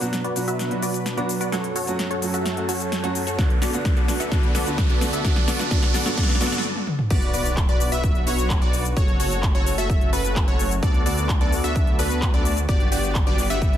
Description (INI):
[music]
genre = EDM, festival progressive house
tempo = 129 BPM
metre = 4/4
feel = straight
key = B minor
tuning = A4 = 437 Hz
[part]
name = clear baby grand piano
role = accompaniment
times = 0.0-6.5 s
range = B2 to F#4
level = -29 LUFS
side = right 2 dB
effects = sidechain pumping, digital delay
[part]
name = lush unison pad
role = sustained chords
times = 0.0-13.8 s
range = D2 to F#5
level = -32 LUFS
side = equal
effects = chorus, sidechain pumping
[part]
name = supersaw stab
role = riff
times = 0.0-13.8 s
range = B3 to E5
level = -27 LUFS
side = equal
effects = sidechain pumping, low-pass filter, digital delay
[part]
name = big-room dance drum kit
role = drums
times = 0.0-13.8 s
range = crash cymbal, handclaps, hi-hat, shaker, snare drum, toms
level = -28 LUFS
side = left 1 dB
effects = overdrive, studio reverb
[part]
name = riser and impact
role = sound effects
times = 1.7-9.0 s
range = none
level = -32 LUFS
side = right 1 dB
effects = none
[part]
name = electronic kick drum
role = drums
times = 3.4-13.7 s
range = none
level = -20 LUFS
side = equal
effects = studio reverb
[part]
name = plucky unison lead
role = arpeggios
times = 7.1-13.8 s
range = B4 to E5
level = -29 LUFS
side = left 1 dB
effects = sidechain pumping, digital delay
[part]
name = wide detuned saw bass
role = bass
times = 7.1-13.8 s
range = F#1 to D2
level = -26 LUFS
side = equal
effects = chorus, sidechain pumping
[sound]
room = light reverb, digital ambience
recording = dense, heavily limited modern master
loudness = -19 LUFS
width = side -11 dB against mid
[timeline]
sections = 0.0-7.1 A section; 7.1-13.8 B section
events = build-up 0.0-7.1; drum fill 0.0-6.6, 6.6-7.1; filter sweep on supersaw synth 0.0-7.1; riser 1.7-6.6; stop 6.6-7.1; drop 7.1-13.8; impact 7.1-9.0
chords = 0.0 Bm; 1.5 F#m; 3.4 D6; 5.2 Gmaj7; 7.1 Bm; 9.0 F#m; 10.8 D6; 12.7 Gmaj7